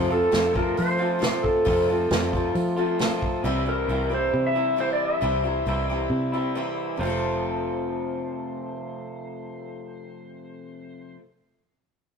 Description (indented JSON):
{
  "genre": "folk rock and heartland rock",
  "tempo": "135 BPM",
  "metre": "4/4",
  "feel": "straight",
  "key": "F major",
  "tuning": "A4 = 441 Hz",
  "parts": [
    { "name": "picked steel-string acoustic guitar", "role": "accompaniment", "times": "0.0-11.3 s", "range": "F2 to A4", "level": "-30 LUFS", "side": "left 4 dB", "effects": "none" },
    { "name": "electric guitar through a small old amp", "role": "riff", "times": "0.0-11.2 s", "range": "F2 to F4", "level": "-30 LUFS", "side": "right 1 dB", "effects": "none" },
    { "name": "fingered electric bass", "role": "bass", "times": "0.0-11.1 s", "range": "F1 to F3", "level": "-29 LUFS", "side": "equal", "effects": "none" },
    { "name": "clean lap steel guitar", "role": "melody", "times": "0.1-11.1 s", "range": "A4 to E5", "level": "-26 LUFS", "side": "right 1 dB", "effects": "none" },
    { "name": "unplugged drum kit", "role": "drums", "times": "0.3-3.3 s", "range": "hi-hat, kick drum, snare drum", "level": "-27 LUFS", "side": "right 1 dB", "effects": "none" }
  ],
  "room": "moderate stone room reverb, RT60 1.3 s",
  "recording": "rough rehearsal-room recording, tube saturation",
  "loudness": "-22 LUFS",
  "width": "side -6 dB against mid",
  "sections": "0.0-7.0 A section; 7.0-10.5 B section",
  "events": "none",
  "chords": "0.0 F; 3.4 C; 7.0 F"
}